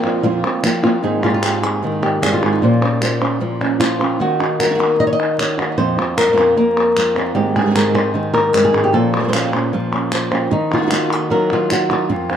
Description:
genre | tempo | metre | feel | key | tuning
flamenco | 152 BPM | 4/4 | straight | unclear | A4 = 440 Hz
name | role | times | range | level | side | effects
flamenco guitar | melody | 0.0-12.4 s | F2 to Eb5 | -16 LUFS | left 1 dB | tape echo
flamenco guitar | stabs | 0.0-12.4 s | F2 to C5 | -21 LUFS | right 5 dB | none
palmas hand claps | percussion | 0.0-12.4 s | none | -22 LUFS | left 1 dB | none
room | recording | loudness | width
moderate plate reverb, RT60 3.2 s | dark, warm production, vinyl crackle | -14 LUFS | side -9 dB against mid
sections
0.0-1.0 A section; 1.0-12.4 B section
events
none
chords
0.0 Fsus4; 1.0 Ab; 2.6 Bbmadd9; 4.2 Ebm; 5.8 Fsus4; 7.4 Ab; 8.9 Bbmadd9; 10.5 Ebm

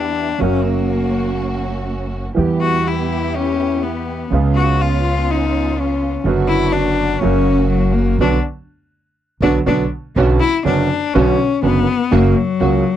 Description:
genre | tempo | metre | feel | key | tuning
tango | 123 BPM | 4/4 | rubato | B harmonic minor | A4 = 440 Hz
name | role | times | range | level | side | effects
clear cello | second line | 0.0-13.0 s | F#3 to F#4 | -19 LUFS | left 7 dB | none
clear concert grand piano | accompaniment | 0.0-12.8 s | F#1 to G4 | -18 LUFS | right 4 dB | none
warm symphonic string section | stabs | 0.0-12.8 s | A#3 to G4 | -26 LUFS | right 3 dB | none
upright bass | bass | 0.0-12.8 s | F#1 to E2 | -20 LUFS | equal | none
room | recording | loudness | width
little or no reverb | dry, close 1970s-style studio recording | -14 LUFS | side -11 dB against mid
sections
0.0-10.2 A section; 10.2-13.0 A section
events
cello solo 0.0-10.2, 10.2-13.0; band accent 8.2-10.2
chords
0.4 F#; 2.4 Em; 4.3 C#7; 6.3 Bm/F#; 7.2 F#; 8.2 Bm; 10.2 Bmadd9; 12.1 F#

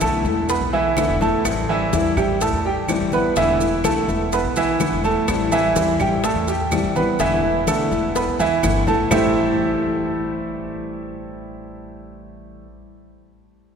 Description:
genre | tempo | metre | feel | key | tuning
latin, Cuban son and guajira | 125 BPM | 4/4 | straight | A minor | A4 = 440 Hz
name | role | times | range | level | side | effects
fingerpicked plugged-in steel-string acoustic guitar | accompaniment | 0.0-12.7 s | A2 to E4 | -24 LUFS | left 4 dB | none
bright baby grand piano | arpeggios | 0.0-12.6 s | E3 to B5 | -20 LUFS | right 4 dB | none
upright bass | bass | 0.0-12.6 s | E1 to E2 | -28 LUFS | left 1 dB | none
bongos | percussion | 0.0-9.2 s | none | -30 LUFS | left 6 dB | none
claves | percussion | 0.0-9.2 s | none | -34 LUFS | right 1 dB | none
congas | percussion | 0.0-9.2 s | none | -31 LUFS | left 2 dB | none
maracas | percussion | 0.0-9.2 s | none | -33 LUFS | right 3 dB | none
room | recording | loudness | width
wet cathedral reverb, RT60 4.4 s | recorded in a church or concert hall | -17 LUFS | side -6 dB against mid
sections
0.0-1.5 A section; 1.5-9.1 B section; 9.1-12.9 C section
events
drum fill 1.0-1.5, 8.6-9.1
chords
0.0 E7sus4; 1.5 Am7; 3.4 E7sus4; 5.3 Am7; 7.2 E7sus4; 9.1 Am7

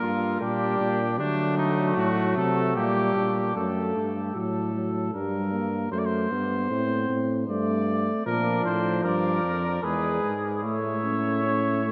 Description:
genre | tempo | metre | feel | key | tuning
classical, imitative canzona for brass ensemble | 76 BPM | 3/4 | straight | G minor | A4 = 440 Hz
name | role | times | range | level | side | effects
warm trumpet | melody | 0.0-11.9 s | D4 to E5 | -32 LUFS | equal | none
warm flugelhorn | second line | 0.0-3.5, 8.3-11.9 s | A3 to C#5 | -32 LUFS | equal | none
dark euphonium | accompaniment | 0.0-11.9 s | F3 to C#4 | -31 LUFS | equal | none
warm tuba | bass | 0.0-11.9 s | E2 to D3 | -31 LUFS | equal | none
room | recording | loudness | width
wet cathedral reverb, RT60 5.1 s | in a vast, echoing space | -26 LUFS | mono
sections
0.0-3.6 A section; 3.6-11.9 B section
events
none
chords
0.4 Gm/Bb; 1.2 D; 2.8 Gm/Bb; 3.6 F#m; 5.1 Gm; 5.9 F#dim; 7.5 G5; 8.3 Bb; 9.8 E; 10.6 A

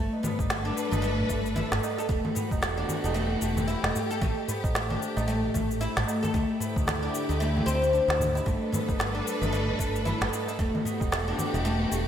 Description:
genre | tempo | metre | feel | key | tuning
organic downtempo | 113 BPM | 4/4 | swing 59% on 16ths | unclear | A4 = 440 Hz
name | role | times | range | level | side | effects
rich chamber string section | sustained chords | 0.0-12.1 s | D3 to B4 | -34 LUFS | left 2 dB | sidechain pumping
oud | arpeggios | 0.0-12.1 s | A3 to A4 | -29 LUFS | left 1 dB | digital delay
mellow fretless electric bass | bass | 0.0-12.1 s | E1 to D2 | -30 LUFS | equal | tube saturation, sidechain pumping
tabla | percussion | 0.1-12.0 s | none | -38 LUFS | right 2 dB | none
electronic congas, shaker and snare drum | drums | 0.2-12.0 s | none | -32 LUFS | equal | overdrive, gated reverb
electronic kick drum | drums | 0.4-11.1 s | none | -30 LUFS | equal | none
room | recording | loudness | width
wet lush hall reverb, RT60 1.9 s, studio reverb | bright 1980s-style digital production | -25 LUFS | side -9 dB against mid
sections
0.0-12.1 A section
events
none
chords
0.0 G; 2.1 Em; 4.2 A5; 6.3 Dsus4; 8.5 G; 10.6 Em7

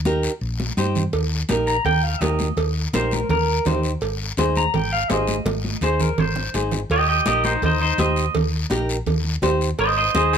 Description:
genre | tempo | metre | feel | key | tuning
latin, cumbia | 166 BPM | 4/4 | straight | Eb major | A4 = 439 Hz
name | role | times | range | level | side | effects
hollow-body short-scale fingered electric bass | bass | 0.0-10.4 s | Ab1 to G2 | -24 LUFS | left 1 dB | none
nylon-string guitar | accompaniment | 0.1-10.4 s | Eb4 to C5 | -22 LUFS | equal | none
congas | percussion | 0.1-10.3 s | none | -27 LUFS | right 2 dB | none
guiro | percussion | 0.1-10.4 s | none | -32 LUFS | left 6 dB | none
cowbell and timbales | percussion | 1.1-10.3 s | none | -29 LUFS | right 6 dB | none
clean electric guitar | melody | 1.7-10.4 s | Eb4 to Bb5 | -22 LUFS | equal | spring reverb, slapback echo
room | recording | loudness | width
light reverb | close, detailed microphones | -18 LUFS | side -7 dB against mid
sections
0.0-1.1 A section; 1.1-10.4 B section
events
drum fill 0.6-1.1, 5.5-6.9; clean electric guitar solo 1.1-10.4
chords
0.0 Eb; 4.0 Ab; 6.9 Eb; 9.8 Ab

